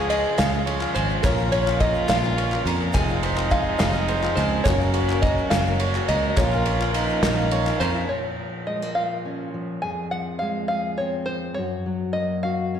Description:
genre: indie folk with a building arrangement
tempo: 70 BPM (dotted quarters)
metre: 6/8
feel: straight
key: Bb minor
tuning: A4 = 440 Hz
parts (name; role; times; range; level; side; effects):
- open-back banjo; melody; 0.0-12.8 s; C5 to Ab5; -26 LUFS; equal; plate reverb, slapback echo
- clear French horn; second line; 0.0-8.1 s; Db4 to Ab4; -28 LUFS; right 3 dB; plate reverb, slapback echo
- picked swing-style acoustic guitar; accompaniment; 0.0-8.1 s; F2 to Gb4; -29 LUFS; left 7 dB; plate reverb, slapback echo
- dark chamber string section; sustained chords; 0.0-8.1 s; C3 to Gb4; -34 LUFS; equal; none
- bright upright piano; arpeggios; 0.0-8.1 s; Ab4 to Bb5; -31 LUFS; right 8 dB; plate reverb, slapback echo
- fingered electric bass; bass; 0.0-8.0 s; F1 to F2; -25 LUFS; equal; none
- loose indie drum kit; drums; 0.1-7.9 s; kick drum, ride cymbal, snare drum; -26 LUFS; right 1 dB; none
- group handclap; percussion; 0.2-8.0 s; none; -38 LUFS; left 4 dB; none
- tube shaker; percussion; 0.4-7.9 s; none; -47 LUFS; right 5 dB; none
- fingerpicked steel-string acoustic guitar; accompaniment; 8.1-12.8 s; F2 to Ab4; -28 LUFS; left 2 dB; plate reverb, slapback echo
room: moderate club reverb, RT60 0.7 s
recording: live gig heard through the venue's PA, recital hall reverb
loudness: -20 LUFS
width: side -8 dB against mid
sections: 0.0-8.1 A section; 8.1-12.8 B section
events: none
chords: 0.0 Db; 1.2 Bbm; 2.9 Fm; 4.7 Gb; 6.4 Bbm; 9.8 Fm; 11.6 Gb

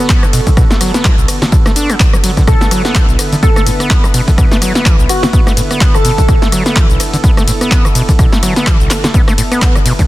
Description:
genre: acid house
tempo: 126 BPM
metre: 4/4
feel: swing 57% on 16ths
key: B minor pentatonic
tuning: A4 = 440 Hz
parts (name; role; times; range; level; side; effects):
- warm analog pad; sustained chords; 0.0-10.1 s; D3 to B4; -21 LUFS; right 1 dB; chorus, sidechain pumping
- overdriven acid bass; riff; 0.0-10.0 s; B1 to D4; -16 LUFS; equal; distortion, ping-pong delay
- punchy analog drum machine; drums; 0.0-10.1 s; cabasa, handclaps, hi-hat, ride cymbal, rim click, snare drum; -16 LUFS; left 1 dB; overdrive, studio reverb
- electronic kick drum; drums; 0.1-10.1 s; none; -10 LUFS; equal; studio reverb
- airy dreamy lead; melody; 2.5-6.4 s; F#4 to A4; -20 LUFS; equal; chorus, dub echo
room: little or no reverb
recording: dense, heavily limited modern master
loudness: -8 LUFS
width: side -16 dB against mid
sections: 0.0-10.1 A section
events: none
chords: 0.0 Bm

